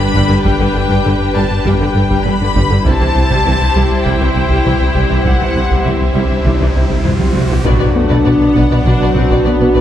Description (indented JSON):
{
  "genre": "cinematic, hybrid orchestral and electronic film score",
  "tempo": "100 BPM",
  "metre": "4/4",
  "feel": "straight",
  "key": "B phrygian",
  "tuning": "A4 = 440 Hz",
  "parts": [
    { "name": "dark studio violin section", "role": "melody", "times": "0.0-9.8 s", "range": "E5 to B5", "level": "-21 LUFS", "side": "left 5 dB", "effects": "none" },
    { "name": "dark studio violin section", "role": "second line", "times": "0.0-9.8 s", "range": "G4 to D5", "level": "-22 LUFS", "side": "left 1 dB", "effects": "none" },
    { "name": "rich symphonic viola section", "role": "accompaniment", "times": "0.0-9.8 s", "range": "C3 to E4", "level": "-21 LUFS", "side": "right 1 dB", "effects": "none" },
    { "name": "chorused pulse-width pad", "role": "sustained chords", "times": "0.0-9.8 s", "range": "F#3 to C5", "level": "-21 LUFS", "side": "left 2 dB", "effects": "none" },
    { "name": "rubbery square bass", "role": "riff", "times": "0.0-9.8 s", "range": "C2 to B3", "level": "-17 LUFS", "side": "left 1 dB", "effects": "none" },
    { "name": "warm sub bass", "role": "bass", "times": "0.0-9.8 s", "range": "G1 to C2", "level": "-20 LUFS", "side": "equal", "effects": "none" },
    { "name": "warm symphonic cello section", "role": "bass", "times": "0.0-9.8 s", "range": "G2 to C3", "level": "-21 LUFS", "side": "right 3 dB", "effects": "none" },
    { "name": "taiko ensemble", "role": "drums", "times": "0.1-9.8 s", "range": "none", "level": "-21 LUFS", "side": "right 1 dB", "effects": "none" },
    { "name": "clear symphonic double bass section", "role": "bass", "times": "0.2-9.8 s", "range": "G1 to C2", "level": "-22 LUFS", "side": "right 3 dB", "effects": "none" },
    { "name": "riser and sub drop", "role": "sound effects", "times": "5.7-9.8 s", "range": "none", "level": "-25 LUFS", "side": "right 1 dB", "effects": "none" },
    { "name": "dark French horn section", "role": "sustained chords", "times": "7.6-9.8 s", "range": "D4 to F#4", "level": "-15 LUFS", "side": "left 2 dB", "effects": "none" },
    { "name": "mellow trombone section", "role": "sustained chords", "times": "7.6-9.8 s", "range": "F#3 to D4", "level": "-21 LUFS", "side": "right 3 dB", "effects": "none" }
  ],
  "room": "moderate scoring stage reverb, RT60 1.6 s",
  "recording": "none",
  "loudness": "-10 LUFS",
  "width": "side -11 dB against mid",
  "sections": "0.0-7.7 A section; 7.7-9.8 B section",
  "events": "riser 5.7-7.7; drum fill 7.0-7.7; impact 7.7-9.8",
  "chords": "0.0 G; 2.9 C; 7.7 Bm"
}